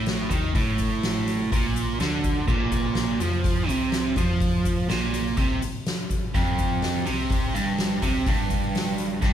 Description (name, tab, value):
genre	psychedelic rock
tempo	124 BPM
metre	4/4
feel	straight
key	unclear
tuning	A4 = 440 Hz
part	biting overdriven guitar	riff	0.0-9.3 s	F2 to F3	-25 LUFS	right 3 dB	none
part	hollow-body short-scale fingered electric bass	bass	0.0-9.3 s	F1 to F2	-31 LUFS	left 1 dB	none
part	soft-mallet drum kit	drums	0.1-9.3 s	crash cymbal, hi-hat, kick drum, snare drum	-26 LUFS	left 1 dB	none
part	maracas	percussion	0.1-9.3 s	none	-44 LUFS	left 10 dB	none
room	moderate large studio reverb, RT60 1.0 s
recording	band playing live in one room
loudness	-22 LUFS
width	side -10 dB against mid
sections	0.0-9.3 A section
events	none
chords	0.0 Gm (rootless); 2.5 Bb5; 6.3 F5